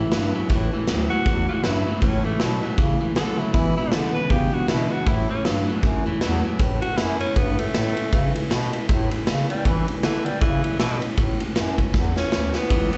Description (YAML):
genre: rockabilly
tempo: 157 BPM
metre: 4/4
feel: swing 59% on 8ths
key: A mixolydian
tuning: A4 = 439 Hz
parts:
  - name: growling tenor saxophone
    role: melody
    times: 0.0-13.0 s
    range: E3 to B4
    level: -30 LUFS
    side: equal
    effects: slapback echo, analog delay
  - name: picked steel-string acoustic guitar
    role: accompaniment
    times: 0.0-13.0 s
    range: E2 to E4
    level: -33 LUFS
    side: equal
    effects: none
  - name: electric guitar at the edge of break-up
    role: riff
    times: 0.0-6.6, 12.7-13.0 s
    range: E2 to F#3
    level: -29 LUFS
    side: equal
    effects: slapback echo
  - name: clear bass clarinet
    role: bass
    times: 0.0-13.0 s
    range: C#2 to E3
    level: -29 LUFS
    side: equal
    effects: none
  - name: raw garage drum kit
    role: drums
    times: 0.1-13.0 s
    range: hi-hat, kick drum, ride cymbal, snare drum, splash cymbal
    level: -25 LUFS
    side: equal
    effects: none
room: light reverb, small room reverb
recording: live gig heard through the venue's PA, club reverb, nothing above 8.0 kHz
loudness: -22 LUFS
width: mono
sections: 0.0-6.6 A section; 6.6-13.0 B section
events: tenor saxophone solo 6.6-13.0; drum fill 11.9-12.7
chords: 0.0 A; 3.5 E7; 5.1 A